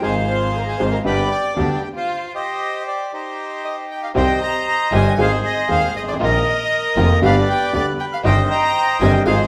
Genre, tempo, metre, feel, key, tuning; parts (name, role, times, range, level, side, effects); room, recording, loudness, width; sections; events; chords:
tango; 117 BPM; 4/4; rubato; C minor; A4 = 439 Hz
bandoneon; melody; 0.0-9.5 s; Eb4 to D6; -23 LUFS; equal
warm violin; second line; 0.0-9.4 s; D4 to Bb5; -27 LUFS; equal
clear upright piano; accompaniment; 0.0-9.5 s; Eb1 to Ab4; -24 LUFS; equal
dark studio string section; stabs; 0.0-9.5 s; Bb3 to Ab4; -31 LUFS; equal
clear double bass; bass; 0.0-9.5 s; F1 to Eb2; -23 LUFS; equal
moderate recital hall reverb, RT60 1.4 s; -19 LUFS; mono
0.0-4.1 A section; 4.1-9.5 A section
stop 2.1-4.1
0.0 Fm/Ab; 1.1 G; 2.1 Cm; 5.2 Ab; 6.2 Bbsus4; 7.2 G; 8.2 Cm/G